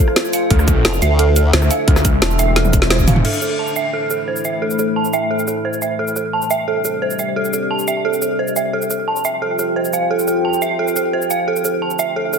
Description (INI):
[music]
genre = dark technical drum and bass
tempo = 175 BPM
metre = 4/4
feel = straight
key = A minor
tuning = A4 = 439 Hz
[part]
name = deep dark ambient pad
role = sustained chords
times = 0.0-12.4 s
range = A3 to B5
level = -22 LUFS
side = left 1 dB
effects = chorus, built-in reverb, sidechain pumping
[part]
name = dark detuned synth bell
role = arpeggios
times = 0.0-12.4 s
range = A4 to A5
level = -19 LUFS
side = right 3 dB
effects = chorus, phaser, sidechain pumping, low-pass filter, ping-pong delay
[part]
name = drum and bass drum kit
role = drums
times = 0.1-12.4 s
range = cabasa, crash cymbal, hi-hat, rim click, snare drum, toms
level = -20 LUFS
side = equal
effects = none
[part]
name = wide detuned saw bass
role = bass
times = 0.5-3.2 s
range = E1 to D2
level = -16 LUFS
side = equal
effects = chorus, overdrive
[part]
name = electronic kick drum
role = drums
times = 0.5-3.1 s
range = none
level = -15 LUFS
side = equal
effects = none
[part]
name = formant-sweep wobble bass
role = bass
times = 0.8-1.5 s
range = F1 to D2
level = -14 LUFS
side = equal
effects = chorus
[sound]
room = moderate digital room reverb, RT60 1.0 s, digital ambience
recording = dense, heavily limited modern master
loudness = -15 LUFS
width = side -6 dB against mid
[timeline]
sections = 0.0-3.2 A section; 3.2-12.4 B section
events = drop 0.0-3.2; drum fill 2.6-3.2; band accent 2.9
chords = 0.0 F; 0.5 Dm; 3.2 A5; 6.0 C5; 8.7 F; 11.5 D5